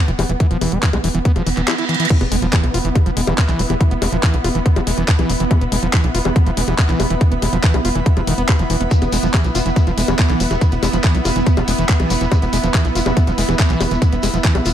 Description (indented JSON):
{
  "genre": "psychedelic trance",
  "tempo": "141 BPM",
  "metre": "4/4",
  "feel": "straight",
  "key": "unclear",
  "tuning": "A4 = 439 Hz",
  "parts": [
    { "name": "swarming drone", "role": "sustained chords", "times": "0.0-14.7 s", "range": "B3", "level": "-24 LUFS", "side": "right 1 dB", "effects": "built-in reverb, sidechain pumping" },
    { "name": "overdriven acid bass", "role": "riff", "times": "0.1-14.7 s", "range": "D#3 to F4", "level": "-23 LUFS", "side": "equal", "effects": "distortion, auto-pan, sidechain pumping, tape echo" },
    { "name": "tight sequencer bass", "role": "bass", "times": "0.1-14.7 s", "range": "E1 to B1", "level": "-20 LUFS", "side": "equal", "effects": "tube saturation" },
    { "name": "garage drum kit", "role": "drums", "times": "0.1-14.7 s", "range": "bongos, crash cymbal, handclaps, hi-hat", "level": "-23 LUFS", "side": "left 3 dB", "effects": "small room ambience" },
    { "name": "electronic kick drum", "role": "drums", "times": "0.4-14.5 s", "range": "none", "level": "-15 LUFS", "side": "equal", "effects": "small room ambience" },
    { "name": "reverse cymbal and impact", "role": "sound effects", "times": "1.5-3.8 s", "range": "none", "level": "-25 LUFS", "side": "right 3 dB", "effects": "none" },
    { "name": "airy breathy pad", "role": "texture", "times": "2.7-14.7 s", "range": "B3 to B5", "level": "-24 LUFS", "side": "right 2 dB", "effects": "chorus, sidechain pumping" },
    { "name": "shekere", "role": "percussion", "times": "8.9-14.7 s", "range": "none", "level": "-31 LUFS", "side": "left 2 dB", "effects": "none" }
  ],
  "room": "light reverb, digital ambience",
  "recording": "none",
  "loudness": "-14 LUFS",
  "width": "side -10 dB against mid",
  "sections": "0.0-2.1 A section; 2.1-14.7 B section",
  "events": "reverse cymbal 1.5-2.1; drum fill 1.9; drop 2.1-14.7; impact 2.1-3.8",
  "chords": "0.0 E5"
}